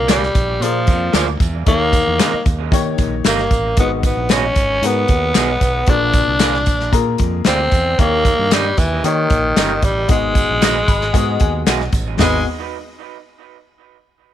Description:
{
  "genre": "uptempo 1960s-style soul",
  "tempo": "114 BPM",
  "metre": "4/4",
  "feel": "straight",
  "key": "G# minor",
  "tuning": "A4 = 440 Hz",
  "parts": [
    { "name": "raspy alto saxophone", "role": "melody", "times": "0.0-12.4 s", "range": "D#3 to D4", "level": "-18 LUFS", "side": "equal", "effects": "none" },
    { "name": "warm baby grand piano", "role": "accompaniment", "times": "0.0-12.4 s", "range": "G#1 to B5", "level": "-23 LUFS", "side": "left 9 dB", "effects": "none" },
    { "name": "modern bright fingered electric bass", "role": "bass", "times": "0.0-12.4 s", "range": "G1 to D#3", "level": "-22 LUFS", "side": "right 2 dB", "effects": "none" },
    { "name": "electric guitar through a small old amp", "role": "stabs", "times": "0.1-12.4 s", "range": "A#3 to D#5", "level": "-25 LUFS", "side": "right 12 dB", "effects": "tape echo" },
    { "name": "natural country drum kit", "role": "drums", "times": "0.1-12.3 s", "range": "hi-hat, kick drum, snare drum, toms", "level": "-17 LUFS", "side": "equal", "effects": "none" },
    { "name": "handclaps and tambourine", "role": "percussion", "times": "0.1-12.4 s", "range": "none", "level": "-27 LUFS", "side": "left 1 dB", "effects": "none" }
  ],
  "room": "light reverb, studio ambience",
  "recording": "1960s-style stereo with parts hard left and right",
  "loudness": "-13 LUFS",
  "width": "side -11 dB against mid",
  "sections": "0.0-12.2 A section; 12.2-14.3 B section",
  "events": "grand piano fill 10.6-12.2",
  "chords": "0.0 A#7; 1.7 D#7sus4; 2.7 D#7; 3.8 G#m7; 5.9 A#7; 8.0 D#7; 10.1 G#m7"
}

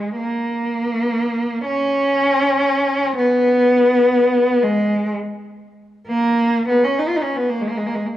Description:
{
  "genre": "classical, free, expressive piece for unaccompanied cello",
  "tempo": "36-43 BPM (dotted quarters)",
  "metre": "6/8",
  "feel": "rubato",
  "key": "unclear",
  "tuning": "A4 = 440 Hz",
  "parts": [
    { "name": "warm cello", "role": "solo", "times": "0.0-8.2 s", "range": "G#3 to E#4", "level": "-16 LUFS", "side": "equal", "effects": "none" }
  ],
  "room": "moderate recital hall reverb, RT60 1.8 s",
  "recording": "worn, warbling old tape, cassette tape, warbly pitch drift",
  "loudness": "-16 LUFS",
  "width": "side -13 dB against mid",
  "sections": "0.0-8.2 A section",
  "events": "none",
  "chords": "none"
}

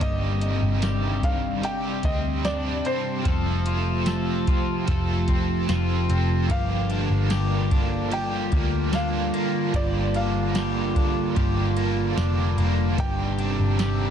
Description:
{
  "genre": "dream pop",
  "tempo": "74 BPM",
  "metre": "4/4",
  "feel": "straight",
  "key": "G minor",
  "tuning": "A4 = 440 Hz",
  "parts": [
    { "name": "felt-muted upright piano", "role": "melody", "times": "0.0-14.1 s", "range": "C5 to G5", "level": "-32 LUFS", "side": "equal", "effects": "tape echo" },
    { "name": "overdriven electric guitar", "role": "accompaniment", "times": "0.0-14.1 s", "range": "G2 to A4", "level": "-32 LUFS", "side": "right 4 dB", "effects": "tremolo, analog chorus" },
    { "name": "warbly tape-like pad", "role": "sustained chords", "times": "0.0-14.1 s", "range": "C3 to F4", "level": "-27 LUFS", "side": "right 1 dB", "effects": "chorus, built-in reverb" },
    { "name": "electric guitar at the edge of break-up", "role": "arpeggios", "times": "0.0-14.1 s", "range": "G2 to A4", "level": "-31 LUFS", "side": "left 4 dB", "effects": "wide subtle chorus, tape echo" },
    { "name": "vintage muted picked electric bass", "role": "bass", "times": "0.0-14.1 s", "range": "F1 to D2", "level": "-26 LUFS", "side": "equal", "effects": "none" },
    { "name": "soft vintage rhythm box", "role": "drums", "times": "0.0-14.0 s", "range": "hi-hat, kick drum, ride cymbal, snare drum, tambourine", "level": "-27 LUFS", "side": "equal", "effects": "none" }
  ],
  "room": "light reverb, digital ambience",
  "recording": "dense, heavily limited modern master",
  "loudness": "-21 LUFS",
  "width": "side -8 dB against mid",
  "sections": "0.0-6.5 A section; 6.5-14.1 A section",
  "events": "none",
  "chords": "0.0 Cmadd9/G; 3.3 F; 6.5 Gm7; 13.0 Cmadd9/G"
}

